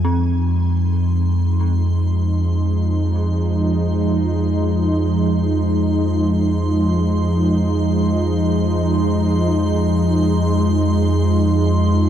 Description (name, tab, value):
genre	dark ambient drone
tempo	free time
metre	none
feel	none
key	F minor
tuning	A4 = 440 Hz
part	sweeping resonant pad	sustained chords	0.0-12.1 s	F3 to Eb4	-19 LUFS	right 1 dB	chorus
part	dark detuned synth bell	arpeggios	0.0-12.1 s	C4	-30 LUFS	right 1 dB	chorus, tremolo, diffuse ambient delay
part	deep rumbling drone	drone	0.0-12.1 s	F2 to F3	-18 LUFS	equal	built-in reverb
part	icy glass pad	texture	0.0-12.1 s	C6	-33 LUFS	right 1 dB	chorus, built-in reverb
room	moderate huge ambient reverb, RT60 8.2 s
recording	dark, warm production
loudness	-16 LUFS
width	side -10 dB against mid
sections	0.0-12.1 A section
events	fade-in on ambient pad 0.0-12.1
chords	0.0 Fm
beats	free time